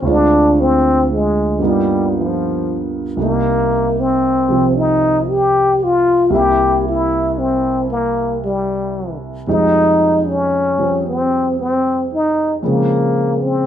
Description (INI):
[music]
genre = jazz ballad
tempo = 76 BPM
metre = 4/4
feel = swing 67% on 8ths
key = unclear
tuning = A4 = 440 Hz
[part]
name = trombone with plunger mute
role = melody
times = 0.0-13.7 s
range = F3 to G4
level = -15 LUFS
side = left 1 dB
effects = none
[part]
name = warm concert grand piano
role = accompaniment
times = 0.0-13.7 s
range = C2 to F4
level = -18 LUFS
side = right 2 dB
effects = none
[sound]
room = light reverb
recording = minimal, uncompressed stereo recording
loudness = -13 LUFS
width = side -10 dB against mid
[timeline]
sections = 0.0-13.7 A section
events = none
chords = 0.0 Dm7b5; 1.6 G7alt; 3.2 Cm7; 6.3 C7; 9.5 Fm9; 12.6 Bbm9